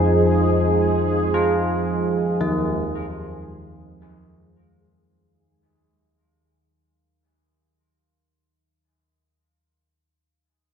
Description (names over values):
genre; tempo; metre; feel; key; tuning
dark ambient drone; 56 BPM; 4/4; straight; F minor; A4 = 440 Hz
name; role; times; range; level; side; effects
dark analog pad; sustained chords; 0.0-5.1 s; Eb4 to C5; -22 LUFS; right 2 dB; chorus
analog drone; drone; 0.0-5.2 s; F2 to F3; -23 LUFS; left 1 dB; chorus
bubbling stepped-filter texture; texture; 0.0-5.1 s; Ab3 to Ab4; -25 LUFS; right 2 dB; chorus, built-in reverb
carillon bells; arpeggios; 1.3-8.8 s; Eb3 to F4; -26 LUFS; left 1 dB; none
room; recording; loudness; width
wet plate reverb, RT60 3.4 s; echo-heavy mix, nothing above 7.7 kHz; -18 LUFS; side -7 dB against mid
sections
0.0-5.1 A section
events
fade-out 0.0-5.1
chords
0.0 Fm